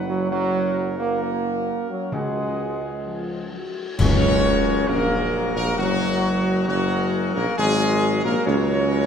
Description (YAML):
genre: classical, ceremonial fanfare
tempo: 67 BPM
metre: 4/4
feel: straight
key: F# major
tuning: A4 = 444 Hz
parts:
  - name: clear trumpet section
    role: melody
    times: 0.0-9.1 s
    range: F#4 to F#5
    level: -26 LUFS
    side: equal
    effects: none
  - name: clear trombone section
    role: sustained chords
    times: 0.0-9.1 s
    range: F#3 to C#4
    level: -26 LUFS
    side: right 3 dB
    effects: none
  - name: mellow French horn section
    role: sustained chords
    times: 0.0-9.1 s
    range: E#3 to F#4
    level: -28 LUFS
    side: left 5 dB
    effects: none
  - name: warm tuba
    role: bass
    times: 0.0-9.1 s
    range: F#1 to C#2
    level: -25 LUFS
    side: right 2 dB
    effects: none
  - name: cymbal swell, clash cymbals and concert bass drum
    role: percussion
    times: 0.3-5.7 s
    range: none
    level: -29 LUFS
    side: left 1 dB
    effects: none
  - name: timpani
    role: percussion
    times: 2.1-5.3 s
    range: F#2 to C#3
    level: -26 LUFS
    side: left 2 dB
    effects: none
  - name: pipe organ, full organ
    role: sustained chords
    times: 4.0-9.1 s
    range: F#3 to A#4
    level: -27 LUFS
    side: left 2 dB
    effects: none
room: wet scoring stage reverb, RT60 1.7 s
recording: none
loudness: -19 LUFS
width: side -7 dB against mid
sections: 0.0-4.0 A section; 4.0-9.1 B section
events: band accent 4.0-4.9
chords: 0.3 F#; 2.1 C#sus4; 4.0 F#add9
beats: | 0.29 1.20 2.13 3.06 | 3.99 4.89 5.79 6.69 | 7.58 8.47